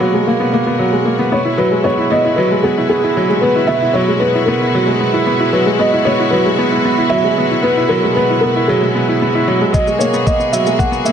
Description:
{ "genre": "piano and strings electronica", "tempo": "114 BPM", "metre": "4/4", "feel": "straight", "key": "unclear", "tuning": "A4 = 440 Hz", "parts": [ { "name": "rich studio string section", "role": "sustained chords", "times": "0.0-11.1 s", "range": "B2 to A#4", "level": "-20 LUFS", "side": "equal", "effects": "none" }, { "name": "clear upright piano", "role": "riff", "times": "0.0-11.1 s", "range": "F#3 to E4", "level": "-15 LUFS", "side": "right 1 dB", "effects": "digital delay" }, { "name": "felt-muted upright piano", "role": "melody", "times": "1.3-11.1 s", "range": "G#4 to F#5", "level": "-17 LUFS", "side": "equal", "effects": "low-pass filter, digital delay" }, { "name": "electronic kick drum", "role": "drums", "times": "9.7-10.9 s", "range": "none", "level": "-17 LUFS", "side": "left 1 dB", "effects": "studio ambience" }, { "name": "shaker", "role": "drums", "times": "9.7-11.1 s", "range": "none", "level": "-28 LUFS", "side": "left 1 dB", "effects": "high-pass filter on perc, studio ambience" } ], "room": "wet recital hall reverb, RT60 1.4 s", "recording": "none", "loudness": "-12 LUFS", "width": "side -8 dB against mid", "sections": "0.0-9.7 A section; 9.7-11.1 B section", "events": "build-up 9.7-11.1", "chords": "0.0 G#m9; 1.3 Eadd9; 9.7 G#m9" }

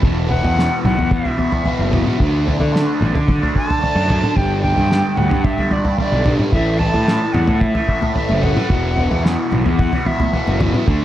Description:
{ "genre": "psychedelic rock", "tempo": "111 BPM", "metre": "4/4", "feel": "straight", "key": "unclear", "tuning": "A4 = 442 Hz", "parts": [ { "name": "fuzz guitar", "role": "riff", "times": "0.0-11.0 s", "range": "E2 to D4", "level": "-20 LUFS", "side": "equal", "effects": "distortion, phaser, tape echo" }, { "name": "fuzz picked electric bass", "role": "bass", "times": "0.0-11.0 s", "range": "E1 to D3", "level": "-19 LUFS", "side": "equal", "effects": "overdrive" }, { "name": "cloth-damped thuddy drum kit", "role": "drums", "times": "0.0-11.0 s", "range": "kick drum, snare drum, toms", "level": "-19 LUFS", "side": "equal", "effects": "none" }, { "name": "silver concert flute", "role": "melody", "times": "0.3-10.6 s", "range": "D5 to A5", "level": "-23 LUFS", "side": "equal", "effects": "tape echo" }, { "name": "congas", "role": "percussion", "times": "7.3-10.7 s", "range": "none", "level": "-28 LUFS", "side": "left 1 dB", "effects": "none" } ], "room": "light reverb", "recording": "echo-heavy mix, lossy compression artefacts", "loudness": "-14 LUFS", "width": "side -12 dB against mid", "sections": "0.0-11.0 A section", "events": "none", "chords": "0.0 Esus2; 2.2 D5; 4.4 G5; 6.5 A5; 8.7 Esus2" }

